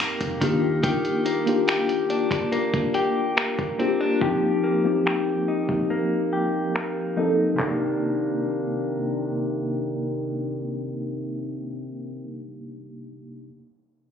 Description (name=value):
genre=contemporary R&B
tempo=71 BPM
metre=4/4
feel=straight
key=C minor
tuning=A4 = 440 Hz
part: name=mellow tine electric piano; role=accompaniment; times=0.0-13.5 s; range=C3 to A4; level=-25 LUFS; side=left 1 dB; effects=medium stereo tremolo
part: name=direct-recorded clean electric guitar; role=arpeggios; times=0.0-12.4 s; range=C3 to G4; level=-27 LUFS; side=left 1 dB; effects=tape echo
part: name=dusty soul sampler-style drum kit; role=drums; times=0.0-7.8 s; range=finger snaps, handclaps, hi-hat, kick drum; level=-26 LUFS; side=equal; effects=none
part: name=vintage muted fingered electric bass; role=bass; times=0.2-0.8 s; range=F1 to Eb2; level=-28 LUFS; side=left 1 dB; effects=none
room=light reverb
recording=recorded on a phone in the room, studio reverb, compression, low-pass filter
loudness=-22 LUFS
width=side -8 dB against mid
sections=0.0-7.6 A section; 7.6-11.0 B section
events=filter sweep 0.0-7.6; kick muted 5.9-7.6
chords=0.4 Ebmaj7; 4.2 F9sus4; 7.6 Cm9